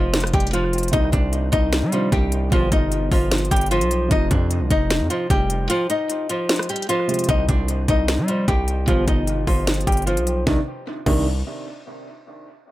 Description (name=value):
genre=hip hop, trap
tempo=151 BPM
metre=4/4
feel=half-time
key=C harmonic minor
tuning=A4 = 440 Hz
part: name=flamenco guitar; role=melody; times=0.0-11.2 s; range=Eb3 to Eb5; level=-23 LUFS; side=equal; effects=low-pass filter, dub echo
part: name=distorted 808-style bass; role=bass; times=0.0-11.4 s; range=F1 to G3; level=-22 LUFS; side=equal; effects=distortion
part: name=trap drum kit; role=drums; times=0.1-11.2 s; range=crash cymbal, hi-hat, kick drum, rim click, snare drum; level=-22 LUFS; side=equal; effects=dub echo
part: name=dark baby grand piano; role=accompaniment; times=0.9-11.2 s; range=B2 to F4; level=-29 LUFS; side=right 3 dB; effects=low-pass filter, dub echo
room=digital ambience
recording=echo-heavy mix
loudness=-18 LUFS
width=side -16 dB against mid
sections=0.0-7.3 A section; 7.3-10.5 B section; 10.5-12.1 C section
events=kick muted 5.7-7.3; filter sweep 7.3-10.5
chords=0.0 F5; 0.9 Cmadd9; 2.5 G7; 4.1 F5; 7.3 Cmadd9; 8.9 G7; 10.5 Cmadd9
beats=0.14 0.53 | 0.93 1.33 1.73 2.12 | 2.52 2.92 3.31 3.71 | 4.11 4.51 4.90 5.30 | 5.70 6.10 6.49 6.89 | 7.29 7.69 8.08 8.48 | 8.88 9.28 9.67 10.07 | 10.47 10.87 11.26